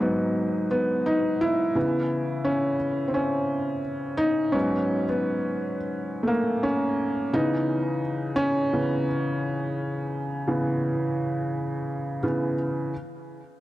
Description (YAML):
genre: hip hop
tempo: 86 BPM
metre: 4/4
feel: swing 64% on 16ths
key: C# minor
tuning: A4 = 443 Hz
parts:
  - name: felt-muted upright piano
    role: solo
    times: 0.0-12.9 s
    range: G#2 to E4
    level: -24 LUFS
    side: equal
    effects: cassette tape, tape echo
room: moderate plate reverb, RT60 2.2 s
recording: dark, warm production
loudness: -23 LUFS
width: side -15 dB against mid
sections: 0.0-12.9 A section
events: felt piano solo 0.0-12.9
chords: 0.0 G#m7; 1.8 C#m7; 4.5 G#m7; 7.3 C#m9